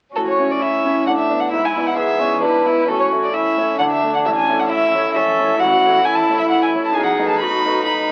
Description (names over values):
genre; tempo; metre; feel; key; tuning
quick classical-period movement for piano quartet; 132 BPM; 3/4; straight; A major; A4 = 440 Hz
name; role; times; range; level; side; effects
warm cello; second line; 0.1-8.1 s; C#4 to A4; -25 LUFS; equal; none
warm violin; melody; 0.2-8.1 s; A4 to B5; -20 LUFS; equal; none
warm violin; second line; 0.2-8.1 s; B3 to E4; -24 LUFS; equal; none
bright baby grand piano; accompaniment; 0.2-8.1 s; A1 to D5; -26 LUFS; equal; none
room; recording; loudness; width
wet studio reverb, RT60 0.5 s; very old 78 rpm record, vinyl crackle; -17 LUFS; mono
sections
0.2-8.1 A section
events
none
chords
0.2 A; 1.1 Bm7/A; 1.5 E7/G#; 2.9 A; 3.8 D5; 4.3 A; 7.0 B7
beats
| 0.15 0.62 1.08 | 1.53 1.99 2.44 | 2.89 3.35 3.80 | 4.25 4.71 5.16 | 5.61 6.06 6.51 | 6.96 7.41 7.86